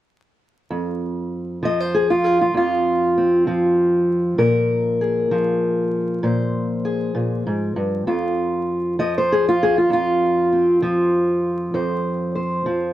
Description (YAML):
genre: acoustic country blues, solo or duo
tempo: 65 BPM (dotted quarters)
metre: 12/8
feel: straight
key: unclear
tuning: A4 = 440 Hz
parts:
  - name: fingerpicked steel-string acoustic guitar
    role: solo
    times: 0.7-12.9 s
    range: F2 to Eb5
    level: -17 LUFS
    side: equal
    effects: none
room: light reverb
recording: dry, close 1970s-style studio recording, vinyl crackle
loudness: -17 LUFS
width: side -13 dB against mid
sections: 0.7-12.9 A section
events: none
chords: 0.7 F5; 4.4 Bb5; 8.1 F5